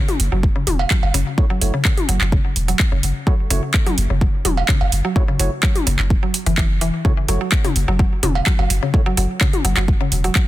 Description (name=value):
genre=minimal techno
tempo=127 BPM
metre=4/4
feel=straight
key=F# minor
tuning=A4 = 440 Hz
part: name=house drum kit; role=drums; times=0.1-10.5 s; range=handclaps, hi-hat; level=-22 LUFS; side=right 1 dB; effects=soft clipping on snare, small room ambience
part: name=electronic toms and cowbell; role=percussion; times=0.1-9.6 s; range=none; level=-25 LUFS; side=left 1 dB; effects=small room ambience, ping-pong delay
part: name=punchy sub bass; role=bass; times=0.2-10.3 s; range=E1 to F#1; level=-19 LUFS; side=equal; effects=sidechain pumping
part: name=mallet-like synth pluck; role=riff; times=0.3-10.4 s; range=C#3 to F#3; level=-24 LUFS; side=left 1 dB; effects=chorus, sidechain pumping, ping-pong delay
part: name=electronic kick drum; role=drums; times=0.4-10.5 s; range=none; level=-17 LUFS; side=equal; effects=small room ambience
part: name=percussive organ stab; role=stabs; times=1.4-9.0 s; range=A3 to C#5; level=-30 LUFS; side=right 2 dB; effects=analog chorus, ping-pong delay
room=little or no reverb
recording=dense, heavily limited modern master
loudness=-15 LUFS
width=side -15 dB against mid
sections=0.0-10.5 A section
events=none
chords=0.0 F#m7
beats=0.43 0.91 | 1.38 1.85 2.32 2.80 | 3.27 3.74 4.21 4.69 | 5.16 5.63 6.10 6.58 | 7.05 7.52 7.99 8.47 | 8.94 9.41 9.88 10.36